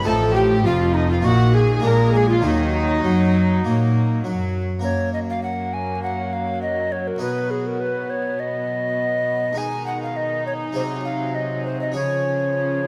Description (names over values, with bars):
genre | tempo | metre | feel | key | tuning
classical, baroque-style concerto movement with solo episodes | 101 BPM | 4/4 | straight | Eb minor, F# major from 4.8 s | A4 = 438 Hz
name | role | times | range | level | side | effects
warm chamber violin section | melody | 0.0-12.9 s | F#4 to Bb5 | -36 LUFS | equal | none
warm chamber violin section | second line | 0.0-12.9 s | A#3 to Bb4 | -30 LUFS | equal | none
dark chamber viola section | accompaniment | 0.0-12.9 s | Eb3 to Ab3 | -33 LUFS | equal | none
harpsichord | accompaniment | 0.0-12.9 s | F2 to B4 | -32 LUFS | equal | none
dark chamber double bass section | bass | 0.0-4.8 s | F1 to Bb2 | -24 LUFS | equal | none
rich chamber cello section | bass | 0.0-12.9 s | F2 to Bb3 | -28 LUFS | equal | none
mellow hollow tenor recorder | melody | 0.1-12.9 s | Eb4 to G#5 | -26 LUFS | equal | none
room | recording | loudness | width
moderate scoring stage reverb, RT60 2.0 s | close, detailed microphones, vinyl crackle | -21 LUFS | mono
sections
0.0-4.8 A section; 4.8-12.9 B section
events
none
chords
0.1 F7/A; 1.2 Ebm/Bb; 1.8 Bb7; 2.4 Ebm; 4.8 F#; 7.2 B; 9.6 G#m/B; 10.8 G#7/B#; 11.9 C#